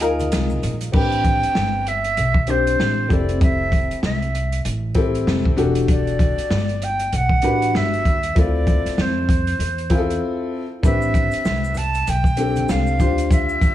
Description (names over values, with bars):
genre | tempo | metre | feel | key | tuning
hip hop, jazz-hop | 97 BPM | 4/4 | swing 59% on 16ths | A minor | A4 = 440 Hz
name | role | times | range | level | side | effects
breathy silver concert flute | melody | 0.0-13.7 s | C5 to A5 | -23 LUFS | right 2 dB | none
clear upright piano | accompaniment | 0.0-13.7 s | C4 to C5 | -23 LUFS | left 3 dB | none
upright bass | bass | 0.0-13.7 s | E1 to F2 | -23 LUFS | equal | none
open jazz drum kit | drums | 0.0-13.7 s | crash cymbal, hi-hat, kick drum, snare drum | -20 LUFS | equal | none
maracas and congas | percussion | 0.0-0.9, 10.8-13.7 s | none | -36 LUFS | left 5 dB | none
room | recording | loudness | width
light reverb, small room ambience | none | -17 LUFS | side -12 dB against mid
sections
0.9-13.7 A section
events
break 0.0-0.9, 10.2-10.8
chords
0.0 Fm7; 0.9 Am11; 3.1 Fmaj7; 5.6 Em11; 8.4 Dm7; 10.8 Am11; 13.0 Dm11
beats
0.32 | 0.94 1.56 2.18 2.79 | 3.41 4.03 4.65 5.27 | 5.89 6.51 7.12 7.74 | 8.36 8.98 9.60 10.22 | 10.84 11.46 12.07 12.69 | 13.31